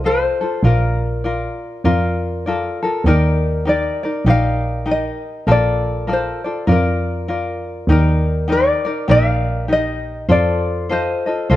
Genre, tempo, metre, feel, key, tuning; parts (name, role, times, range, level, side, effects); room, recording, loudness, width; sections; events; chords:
Hawaiian; 99 BPM; 4/4; swing 62% on 8ths; Bb major; A4 = 440 Hz
tenor ukulele; accompaniment; 0.0-11.6 s; Eb4 to Eb5; -21 LUFS; left 2 dB
rich double bass; bass; 0.0-11.6 s; Bb1 to F2; -18 LUFS; right 1 dB
tenor ukulele; melody; 0.1-11.6 s; A4 to F5; -20 LUFS; left 2 dB
light reverb; dark, warm production; -15 LUFS; side -14 dB against mid
0.0-3.1 A section; 3.1-11.6 B section
0.0 F7; 0.6 Bbmaj7; 3.1 Ebmaj7; 5.5 Bbmaj7; 7.9 Ebmaj7; 10.3 F7